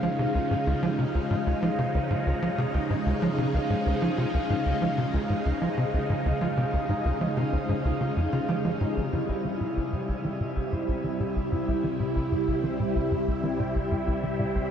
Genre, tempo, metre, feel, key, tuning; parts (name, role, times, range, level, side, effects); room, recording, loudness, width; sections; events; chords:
ambient, sequencer-driven space music; 94 BPM; 4/4; straight; A4 = 440 Hz
phased string machine; sustained chords; 0.0-14.7 s; C3 to E4; -28 LUFS; equal; ensemble chorus, phaser
concert harp; arpeggios; 0.0-14.7 s; Eb4 to F5; -33 LUFS; equal; auto-pan, low-pass filter, ping-pong delay
tight sequencer bass; riff; 0.0-14.6 s; C2 to F3; -28 LUFS; equal; lush chorus, ping-pong delay
round analog bass; bass; 9.0-14.7 s; C2; -47 LUFS; equal
wet shimmer reverb, RT60 8.8 s; dark, warm production; -24 LUFS; side -8 dB against mid
0.0-9.0 A section; 9.0-14.7 B section
filter sweep on analog synth bass 9.0-14.7
0.0 Dbsus2; 9.0 C